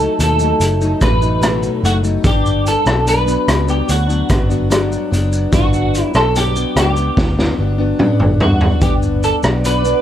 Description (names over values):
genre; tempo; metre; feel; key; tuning
indie pop, bedroom pop; 73 BPM; 4/4; straight; G major; A4 = 441 Hz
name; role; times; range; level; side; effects
clean electric guitar; melody; 0.0-10.0 s; F#4 to B4; -19 LUFS; right 1 dB; ensemble chorus, analog delay
picked plugged-in steel-string acoustic guitar; accompaniment; 0.0-10.0 s; G2 to D#4; -20 LUFS; left 4 dB; wide subtle chorus, warbly pitch drift
vintage muted picked electric bass; bass; 0.0-9.9 s; F#1 to G2; -18 LUFS; equal; none
raw garage drum kit; drums; 0.2-10.0 s; hi-hat, kick drum, rim click, shaker, snare drum, toms; -17 LUFS; equal; none
shimmering ambient pad; sustained chords; 9.4-10.0 s; B4 to D6; -21 LUFS; right 5 dB; chorus, built-in reverb
room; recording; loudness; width
light reverb; dark, warm production; -13 LUFS; side -10 dB against mid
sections
0.0-8.8 A section; 8.8-10.0 A section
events
drum fill 7.2-8.8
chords
0.0 B7; 2.2 Gmaj7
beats
0.60 1.42 | 2.24 3.06 3.88 4.71 | 5.53 6.35 7.17 7.99 | 8.81 9.64